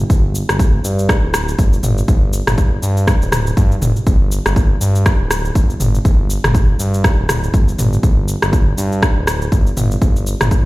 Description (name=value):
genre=afro house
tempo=121 BPM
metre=4/4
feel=swing 58% on 16ths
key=unclear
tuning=A4 = 439 Hz
part: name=smooth synth bass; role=bass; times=0.0-10.7 s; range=D1 to G2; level=-17 LUFS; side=equal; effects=sidechain pumping
part: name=house drum kit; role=drums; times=0.0-10.6 s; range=rim click, shaker, toms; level=-19 LUFS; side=equal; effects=none
part: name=electronic kick drum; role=drums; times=0.1-10.6 s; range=none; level=-13 LUFS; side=equal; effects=none
room=little or no reverb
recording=played on a big sound system in a bare room, stone room reverb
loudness=-12 LUFS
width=side -19 dB against mid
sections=0.0-10.7 A section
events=none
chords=none